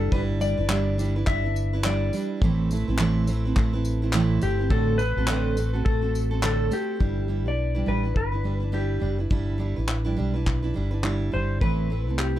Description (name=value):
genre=acoustic pop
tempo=104 BPM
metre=4/4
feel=swing 60% on 16ths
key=G major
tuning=A4 = 440 Hz
part: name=clean lap steel guitar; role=melody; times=0.0-12.4 s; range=G4 to E5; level=-30 LUFS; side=left 4 dB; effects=none
part: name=picked steel-string acoustic guitar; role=accompaniment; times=0.0-12.4 s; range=A2 to B4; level=-27 LUFS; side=right 4 dB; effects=none
part: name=mellow fretless electric bass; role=bass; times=0.0-12.4 s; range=F#1 to C2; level=-26 LUFS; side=equal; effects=ensemble chorus
part: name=modern studio drum kit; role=drums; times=0.1-12.3 s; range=handclaps, kick drum, tambourine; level=-26 LUFS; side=left 1 dB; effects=none
part: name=group handclap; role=percussion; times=0.7-6.6 s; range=none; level=-38 LUFS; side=left 2 dB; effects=none
room=little or no reverb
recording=none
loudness=-22 LUFS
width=side -13 dB against mid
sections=0.0-7.0 A section; 7.0-12.4 B section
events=none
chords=0.0 G6; 2.4 Amadd9; 4.7 D7/A; 7.0 G6; 11.6 Amadd9